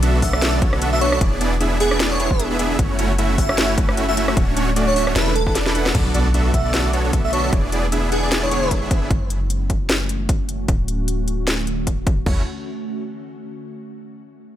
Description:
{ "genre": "future bass", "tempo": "152 BPM", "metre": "4/4", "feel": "swing 56% on 16ths, half-time", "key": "F# minor", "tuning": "A4 = 441 Hz", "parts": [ { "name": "ethereal airy pad", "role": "sustained chords", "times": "0.0-12.4 s", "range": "D3 to F#4", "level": "-30 LUFS", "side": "equal", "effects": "ensemble chorus, built-in reverb, sidechain pumping" }, { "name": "supersaw chords", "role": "riff", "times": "0.0-9.1, 12.3-12.4 s", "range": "A3 to F#5", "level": "-22 LUFS", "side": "right 1 dB", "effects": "sidechain pumping, digital delay" }, { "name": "warm 808-style bass", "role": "bass", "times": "0.0-12.4 s", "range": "D1 to B1", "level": "-22 LUFS", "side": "equal", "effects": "sidechain pumping" }, { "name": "trap drum kit", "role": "drums", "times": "0.0-12.2 s", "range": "crash cymbal, hi-hat, rim click, snare drum", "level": "-23 LUFS", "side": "left 1 dB", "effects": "studio ambience" }, { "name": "airy dreamy lead", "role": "melody", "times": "0.2-8.7 s", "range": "G#4 to E5", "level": "-24 LUFS", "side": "right 1 dB", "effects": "chorus, sidechain pumping, digital delay" }, { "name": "trap drum kit", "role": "drums", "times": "0.2-12.4 s", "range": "crash cymbal, kick drum, toms", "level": "-20 LUFS", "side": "equal", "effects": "studio ambience" }, { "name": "impact", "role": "sound effects", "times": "5.9-7.5 s", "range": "none", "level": "-31 LUFS", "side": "left 1 dB", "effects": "none" } ], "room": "digital ambience", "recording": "none", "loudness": "-17 LUFS", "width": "side -11 dB against mid", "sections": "0.0-5.9 A section; 5.9-12.3 B section; 12.3-13.8 C section", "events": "drop 0.0-5.9; drum fill 5.6-5.9; band accent 5.8; impact 5.9-7.5; filter sweep on ambient pad 5.9-12.3", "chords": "0.0 Bm7; 1.2 E7; 2.8 F#m7; 4.4 Dmaj7; 5.2 E7sus4; 5.9 Bm7; 7.5 E7; 9.1 F#m7; 10.7 Dmaj7; 12.3 F#m7", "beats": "0.03 0.42 0.82 | 1.21 1.60 2.00 2.40 | 2.79 3.18 3.58 3.97 | 4.37 4.76 5.16 5.55 | 5.95 6.34 6.74 7.13 | 7.53 7.92 8.32 8.71 | 9.11 9.50 9.89 10.29 | 10.68 11.08 11.47 11.87 | 12.26" }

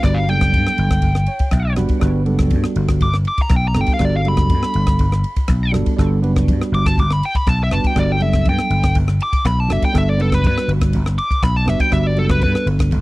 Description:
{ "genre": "electric jazz fusion", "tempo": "121 BPM", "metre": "4/4", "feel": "straight", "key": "G major", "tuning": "A4 = 439 Hz", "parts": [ { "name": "smooth overdriven lead guitar", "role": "melody", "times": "0.0-12.7 s", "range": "A4 to D6", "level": "-22 LUFS", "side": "left 1 dB", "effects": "tape echo" }, { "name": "bell-like tine electric piano", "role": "accompaniment", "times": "0.0-13.0 s", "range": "F#3 to F#5", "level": "-22 LUFS", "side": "right 3 dB", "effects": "analog chorus" }, { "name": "vintage slap bass", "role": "bass", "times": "0.0-13.0 s", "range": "F#1 to G2", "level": "-17 LUFS", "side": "equal", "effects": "none" }, { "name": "crisp fusion drum kit", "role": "drums", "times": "0.0-13.0 s", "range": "kick drum, ride cymbal, rim click", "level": "-19 LUFS", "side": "equal", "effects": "none" } ], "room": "little or no reverb", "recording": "dry, close 1970s-style studio recording", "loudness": "-14 LUFS", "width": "side -19 dB against mid", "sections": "0.0-13.0 A section", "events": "lead electric guitar solo 0.0-13.0; tine electric piano fill 1.0-2.0", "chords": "0.0 Gmaj7", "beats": "| 0.04 0.54 1.03 1.53 | 2.02 2.52 3.01 3.51 | 4.00 4.50 4.99 5.49 | 5.98 6.48 6.97 7.47 | 7.96 8.46 8.95 9.45 | 9.94 10.43 10.93 11.42 | 11.92 12.41 12.91" }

